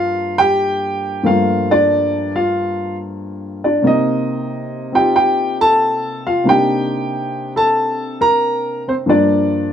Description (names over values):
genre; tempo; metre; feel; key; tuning
solo jazz; 92 BPM; 4/4; swing 67% on 8ths; G minor; A4 = 440 Hz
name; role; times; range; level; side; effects
warm upright piano; solo; 0.0-9.7 s; G2 to Bb5; -14 LUFS; equal; none
room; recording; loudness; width
moderate studio reverb, RT60 0.6 s; dark, warm production; -14 LUFS; side -9 dB against mid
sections
0.0-9.7 A section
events
none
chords
0.0 Gm9; 3.8 Cm9; 9.1 Gm7